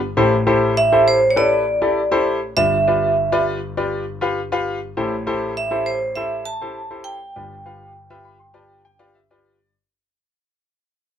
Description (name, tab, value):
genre	soul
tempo	100 BPM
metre	4/4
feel	straight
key	A minor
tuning	A4 = 444 Hz
part	clear grand piano	accompaniment	0.0-9.7 s	G1 to C6	-20 LUFS	left 2 dB	none
part	vibraphone with hard mallets	melody	0.8-9.1 s	C5 to A5	-18 LUFS	right 2 dB	none
room	moderate club ambience, RT60 0.5 s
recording	none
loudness	-16 LUFS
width	side -9 dB against mid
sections	0.2-9.8 A section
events	fade-out 0.2-9.8; grand piano fill 8.0-9.8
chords	0.2 Am7; 2.6 G7; 5.0 Am7; 7.4 G7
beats	| 0.17 0.77 1.36 1.96 | 2.56 3.16 3.76 4.36 | 4.96 5.56 6.16 6.76 | 7.36 7.96 8.55 9.15